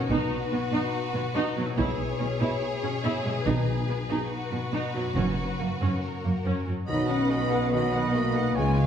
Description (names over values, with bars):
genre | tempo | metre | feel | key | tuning
cinematic | 142 BPM | 4/4 | straight | B major | A4 = 436 Hz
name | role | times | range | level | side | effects
rich symphonic violin section | melody | 0.0-8.9 s | A#4 to B5 | -37 LUFS | left 2 dB | none
warm symphonic violin section | second line | 0.0-8.9 s | F#4 to F#5 | -35 LUFS | left 3 dB | none
rich symphonic viola section | accompaniment | 0.0-8.9 s | F#3 to B4 | -32 LUFS | right 2 dB | none
concert harp | arpeggios | 0.0-8.9 s | F#2 to A#5 | -33 LUFS | left 5 dB | none
clear symphonic double bass section | bass | 0.1-8.9 s | F#1 to C#2 | -31 LUFS | right 3 dB | none
rich symphonic cello section | bass | 0.1-8.9 s | F#2 to C#3 | -30 LUFS | right 2 dB | none
timpani | percussion | 3.5-5.8 s | F#2 to B2 | -35 LUFS | equal | none
mellow flute section | second line | 6.9-8.9 s | F#5 to G#5 | -35 LUFS | right 2 dB | none
warm oboe | second line | 6.9-8.9 s | C#5 to D#5 | -32 LUFS | right 2 dB | none
clear trombone section | sustained chords | 6.9-8.7 s | C#3 to G#3 | -34 LUFS | right 2 dB | none
mellow French horn section | sustained chords | 6.9-8.9 s | G#3 to D#4 | -28 LUFS | left 2 dB | none
room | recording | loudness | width
wet recital hall reverb, RT60 1.4 s | heard from further back in the room | -24 LUFS | side -8 dB against mid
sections
0.0-6.9 A section; 6.9-8.9 B section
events
build-up 0.0-6.9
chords
0.1 B; 1.8 C#m/B; 3.5 B; 5.2 F#; 6.9 B